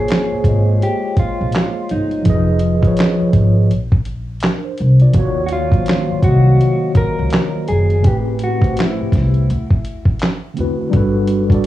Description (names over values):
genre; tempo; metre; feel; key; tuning
lo-fi hip hop; 83 BPM; 4/4; swing 60% on 16ths; unclear; A4 = 441 Hz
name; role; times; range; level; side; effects
mellow electric guitar; melody; 0.0-10.2 s; Eb4 to Bb4; -22 LUFS; equal; spring reverb, low-pass filter, tape echo, plate reverb
mellow tine electric piano; accompaniment; 0.0-11.7 s; A2 to F5; -18 LUFS; equal; medium stereo tremolo, low-pass filter
dusty soul sampler-style drum kit; drums; 0.1-11.7 s; handclaps, hi-hat, kick drum, snare drum; -16 LUFS; equal; none
upright bass; bass; 0.3-11.5 s; F1 to E2; -16 LUFS; equal; none
room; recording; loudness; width
light reverb; cassette tape, studio reverb; -13 LUFS; side -14 dB against mid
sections
0.0-11.7 A section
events
none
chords
0.0 Bbm9; 2.3 Fm7b5; 3.7 Bbadd9; 5.1 Ebm7; 8.0 Am7; 9.5 D13; 10.9 Gmaj9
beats
0.09 0.81 1.53 | 2.26 2.98 3.70 4.43 | 5.15 5.87 6.59 7.32 | 8.04 8.76 9.49 10.21 | 10.93 11.65